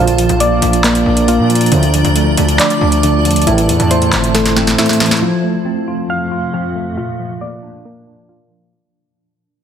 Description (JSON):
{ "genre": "hip hop, trap", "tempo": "137 BPM", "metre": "4/4", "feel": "half-time", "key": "unclear", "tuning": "A4 = 442 Hz", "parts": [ { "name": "mellow tine electric piano", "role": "accompaniment", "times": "0.0-8.7 s", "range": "A2 to F4", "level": "-17 LUFS", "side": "right 1 dB", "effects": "medium stereo tremolo, low-pass filter" }, { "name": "granular cloud pad", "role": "sustained chords", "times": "0.0-8.7 s", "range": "F2 to Bb5", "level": "-22 LUFS", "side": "right 1 dB", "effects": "built-in reverb, low-pass filter" }, { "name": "soft electric-piano-like synth keys", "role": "arpeggios", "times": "0.0-8.7 s", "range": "D3 to F5", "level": "-16 LUFS", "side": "left 1 dB", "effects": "chorus, low-pass filter, digital delay" }, { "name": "dark brass ensemble", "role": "stabs", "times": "0.0-3.8 s", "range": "C2 to F3", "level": "-19 LUFS", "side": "right 4 dB", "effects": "none" }, { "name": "distorted 808-style bass", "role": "bass", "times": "0.0-4.8 s", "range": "G1 to Bb2", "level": "-17 LUFS", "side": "right 1 dB", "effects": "distortion" }, { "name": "booming analog drum machine", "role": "drums", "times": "0.1-5.2 s", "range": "handclaps, hi-hat, snare drum", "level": "-17 LUFS", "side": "equal", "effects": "none" } ], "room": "moderate recital hall reverb, RT60 1.5 s, digital ambience", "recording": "dense, heavily limited modern master", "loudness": "-11 LUFS", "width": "side -8 dB against mid", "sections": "0.0-5.2 A section; 5.2-8.7 B section", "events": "drum fill 4.3-5.2; fade-out 5.2-8.7; filter sweep 5.2-8.7", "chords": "0.0 Bb; 1.7 Dm; 3.5 Am; 5.2 F; 7.0 Bb" }